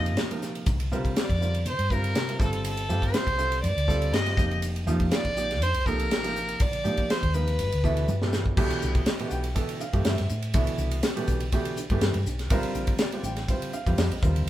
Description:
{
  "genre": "electric jazz fusion",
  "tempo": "122 BPM",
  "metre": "4/4",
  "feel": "swing 53% on 16ths",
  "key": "C major from 8.6 s",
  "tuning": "A4 = 437 Hz",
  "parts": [
    { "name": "warm violin", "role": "melody", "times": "0.0-8.1 s", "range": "A4 to Eb5", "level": "-29 LUFS", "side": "equal", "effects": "none" },
    { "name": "clear grand piano", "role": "accompaniment", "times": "0.0-14.5 s", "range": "B2 to G5", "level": "-31 LUFS", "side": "right 2 dB", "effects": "none" },
    { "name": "hollow-body short-scale fingered electric bass", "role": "bass", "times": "0.0-14.5 s", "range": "F1 to C3", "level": "-28 LUFS", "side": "equal", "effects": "none" },
    { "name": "tight funk drum kit", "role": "drums", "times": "0.1-14.5 s", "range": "crash cymbal, hi-hat, kick drum, ride cymbal, snare drum, toms", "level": "-28 LUFS", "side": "equal", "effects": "none" }
  ],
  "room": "moderate studio reverb, RT60 0.6 s",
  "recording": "band playing live in one room",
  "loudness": "-24 LUFS",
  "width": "side -13 dB against mid",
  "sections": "0.0-8.6 A section; 8.6-14.5 B section",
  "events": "drum fill 8.1-8.6",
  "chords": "0.0 Bbsus4; 0.7 C9sus4; 2.4 G9sus4; 4.4 F13sus4; 6.6 Bbsus24; 7.6 Gadd9; 8.6 Cmaj9; 12.5 Bbmaj9"
}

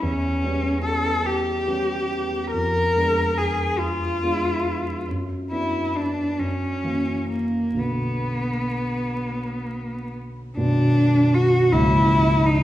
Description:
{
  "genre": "classical, romantic duo for cello and grand piano",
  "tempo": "41-56 BPM (dotted quarters)",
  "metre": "6/8",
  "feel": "rubato",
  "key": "B minor",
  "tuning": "A4 = 438 Hz",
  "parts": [
    { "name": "rich cello", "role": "melody", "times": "0.0-12.6 s", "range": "A#3 to A#4", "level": "-22 LUFS", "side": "left 1 dB", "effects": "none" },
    { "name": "dark concert grand piano", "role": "accompaniment", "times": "0.0-12.6 s", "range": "B0 to D4", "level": "-24 LUFS", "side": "equal", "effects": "none" }
  ],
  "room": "wet recital hall reverb, RT60 1.4 s",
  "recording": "heard from further back in the room, vinyl crackle",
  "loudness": "-20 LUFS",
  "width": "side -14 dB against mid",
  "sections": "0.0-10.6 A section; 10.6-12.6 B section",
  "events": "none",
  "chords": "0.0 C#m7b5/E; 2.5 Fdim7; 5.1 Bm/F#; 6.4 F#7; 7.8 Bm; 11.7 A#dim/C#"
}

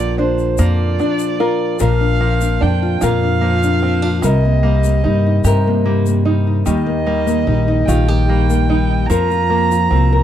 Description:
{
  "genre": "acoustic folk duo or small band",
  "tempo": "49 BPM (dotted quarters)",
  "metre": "6/8",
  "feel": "straight",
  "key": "Bb major",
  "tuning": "A4 = 442 Hz",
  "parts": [
    { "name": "dark fiddle", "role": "second line", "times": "0.0-10.2 s", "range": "C5 to Bb5", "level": "-21 LUFS", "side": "right 5 dB", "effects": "none" },
    { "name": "nylon-string guitar", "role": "accompaniment", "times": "0.0-10.2 s", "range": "Bb2 to Bb4", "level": "-18 LUFS", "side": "left 4 dB", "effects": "none" },
    { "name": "open-back banjo", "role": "arpeggios", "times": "0.0-10.2 s", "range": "D3 to G4", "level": "-24 LUFS", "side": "right 7 dB", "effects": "none" },
    { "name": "upright bass", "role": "bass", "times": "0.0-10.2 s", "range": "Bb1 to G2", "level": "-16 LUFS", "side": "equal", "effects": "none" },
    { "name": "egg shaker", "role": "percussion", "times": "0.4-9.9 s", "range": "none", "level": "-32 LUFS", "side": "left 29 dB", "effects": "none" }
  ],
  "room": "light reverb",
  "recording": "dry, close 1970s-style studio recording",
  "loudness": "-13 LUFS",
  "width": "side -10 dB against mid",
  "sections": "0.0-1.8 A section; 1.8-10.2 B section",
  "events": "fiddle solo 0.0-1.8, 1.8-10.2",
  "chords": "0.0 Bb; 4.2 Cm7; 6.7 Eb; 9.1 Fsus4"
}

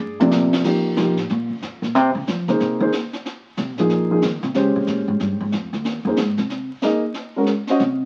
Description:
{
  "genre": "jazz piano trio",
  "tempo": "184 BPM",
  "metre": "4/4",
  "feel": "swing 63% on 8ths",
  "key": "Eb mixolydian",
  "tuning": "A4 = 440 Hz",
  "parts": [
    { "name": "warm baby grand piano", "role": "melody", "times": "0.0-7.8 s", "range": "C3 to Eb5", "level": "-21 LUFS", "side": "equal", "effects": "none" },
    { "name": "upright bass", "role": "bass", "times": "0.0-8.1 s", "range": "Db2 to F3", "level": "-25 LUFS", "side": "equal", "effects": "none" },
    { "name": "jazz brush drum kit", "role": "drums", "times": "0.2-8.1 s", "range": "brushed snare drum, crash cymbal, hi-hat, kick drum, snare drum, toms", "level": "-30 LUFS", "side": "equal", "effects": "none" }
  ],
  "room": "moderate studio reverb, RT60 0.9 s",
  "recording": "very old 78 rpm record, vinyl crackle",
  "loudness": "-21 LUFS",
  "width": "mono",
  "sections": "0.6-8.1 A section",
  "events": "drum fill 0.0-0.6; upright bass solo 0.6-8.1",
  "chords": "0.0 Bb13; 0.6 Eb13; 1.9 Ab69; 3.2 Eb13; 5.9 Ab"
}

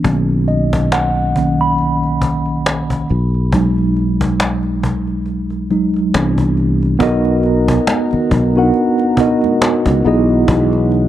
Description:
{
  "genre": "R&B, neo-soul",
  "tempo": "69 BPM",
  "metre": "4/4",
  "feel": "swing 58% on 16ths",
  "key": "B major",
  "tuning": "A4 = 436 Hz",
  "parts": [
    { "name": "mellow tine electric piano", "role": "accompaniment", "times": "0.0-11.1 s", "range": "D#3 to B5", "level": "-15 LUFS", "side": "right 1 dB", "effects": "medium stereo tremolo, low-pass filter" },
    { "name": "sustaining fretless electric bass", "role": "bass", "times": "0.0-11.1 s", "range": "B1 to C#2", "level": "-17 LUFS", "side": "left 1 dB", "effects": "analog chorus" },
    { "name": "cajon", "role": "drums", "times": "0.0-11.0 s", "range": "none", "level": "-20 LUFS", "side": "left 1 dB", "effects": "none" },
    { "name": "mellow tonewheel organ", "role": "sustained chords", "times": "7.0-11.1 s", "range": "E3 to A#4", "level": "-23 LUFS", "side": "left 1 dB", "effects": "slow rotary speaker" },
    { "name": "congas", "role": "percussion", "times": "7.0-10.9 s", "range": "none", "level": "-27 LUFS", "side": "left 2 dB", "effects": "none" }
  ],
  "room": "light reverb, small room ambience",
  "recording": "dark, warm production",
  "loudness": "-13 LUFS",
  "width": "side -12 dB against mid",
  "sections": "0.0-7.0 A section; 7.0-11.1 B section",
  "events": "tine electric piano solo 0.0-7.0; filter sweep on tine electric piano 0.0-7.0",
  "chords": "0.0 Bmaj7; 3.1 B6; 6.1 Cmaj7; 7.0 Bmaj7; 10.0 Emaj7/B"
}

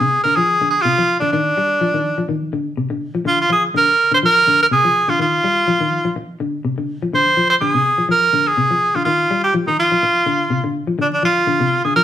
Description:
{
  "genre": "afrobeat",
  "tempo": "124 BPM",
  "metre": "4/4",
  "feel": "swing 54% on 16ths",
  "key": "F dorian",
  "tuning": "A4 = 437 Hz",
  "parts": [
    { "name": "edgy tenor saxophone", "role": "melody", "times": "0.0-12.0 s", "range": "D4 to C5", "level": "-14 LUFS", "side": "right 1 dB", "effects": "none" },
    { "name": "clean electric guitar", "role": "arpeggios", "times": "0.0-12.0 s", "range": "C3 to G3", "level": "-21 LUFS", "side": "left 3 dB", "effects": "none" }
  ],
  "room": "wet studio reverb, RT60 0.8 s",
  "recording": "band playing live in one room",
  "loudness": "-14 LUFS",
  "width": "side -11 dB against mid",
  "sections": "0.0-12.0 A section",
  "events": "none",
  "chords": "0.0 F5; 1.3 Ebmaj9; 3.3 F5; 5.2 Ebmaj9; 7.1 Fm6; 9.1 Ebmaj9; 11.0 F5"
}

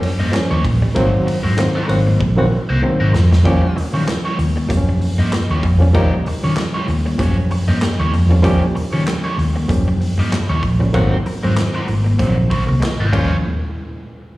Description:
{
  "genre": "funk",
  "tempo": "96 BPM",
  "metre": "4/4",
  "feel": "swing 56% on 16ths",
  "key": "Eb mixolydian",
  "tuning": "A4 = 440 Hz",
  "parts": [
    { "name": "semi-hollow electric guitar", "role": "riff", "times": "0.0-13.3 s", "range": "Gb3 to Bb3", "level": "-27 LUFS", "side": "right 2 dB", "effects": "tube saturation" },
    { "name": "barky reed electric piano", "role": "stabs", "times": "0.0-13.4 s", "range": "Eb3 to Eb5", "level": "-20 LUFS", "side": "right 1 dB", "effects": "overdrive, fast tremolo, slapback echo" },
    { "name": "raw garage drum kit", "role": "drums", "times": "0.0-13.3 s", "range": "crash cymbal, handclaps, hi-hat, kick drum, ride cymbal, snare drum", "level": "-22 LUFS", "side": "equal", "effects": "none" },
    { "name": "crunchy overdriven guitar", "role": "accompaniment", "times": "0.2-13.3 s", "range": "C4 to Eb5", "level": "-27 LUFS", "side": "equal", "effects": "wah, spring reverb, slapback echo" },
    { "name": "vintage muted fingered electric bass", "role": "bass", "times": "0.2-13.4 s", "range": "Ab1 to Eb3", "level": "-16 LUFS", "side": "equal", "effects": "none" },
    { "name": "raspy tenor saxophone", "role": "second line", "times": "1.9-13.3 s", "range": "F4 to G4", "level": "-28 LUFS", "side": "left 1 dB", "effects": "slapback echo" }
  ],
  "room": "little or no reverb",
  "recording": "live gig heard through the venue's PA, recital hall reverb, small room reverb",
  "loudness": "-14 LUFS",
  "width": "side -18 dB against mid",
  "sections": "0.0-3.4 A section; 3.4-13.4 B section",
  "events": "drum fill 2.2-3.4; reed electric piano fill 12.5-13.4",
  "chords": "0.0 Eb9; 1.0 Ab9; 3.4 Eb9; 10.9 Ab9; 13.1 Eb9; 13.4 N.C."
}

